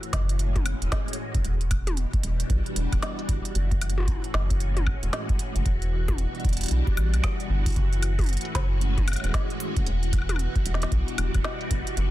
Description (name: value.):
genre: IDM.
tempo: 114 BPM.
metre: 4/4.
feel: swing 62% on 16ths.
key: unclear.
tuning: A4 = 440 Hz.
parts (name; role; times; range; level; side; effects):
soft string machine; sustained chords; 0.0-12.1 s; A2 to F#4; -33 LUFS; equal; phaser, ensemble chorus.
organic electronic drum kit; drums; 0.0-12.1 s; hi-hat, snare drum, toms, woodblock; -33 LUFS; equal; overdrive, small room ambience, dub echo.
rubbery square bass; bass; 0.1-12.1 s; D1 to B1; -25 LUFS; equal; none.
electronic kick drum; drums; 0.1-11.8 s; none; -26 LUFS; equal; small room ambience.
room: little or no reverb.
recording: dense, heavily limited modern master.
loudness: -23 LUFS.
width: side -15 dB against mid.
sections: 0.0-12.1 A section.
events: none.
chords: 0.0 F#m9; 1.4 Em9; 3.5 F#m9; 5.7 Em9; 7.8 F#m9; 9.9 Em9.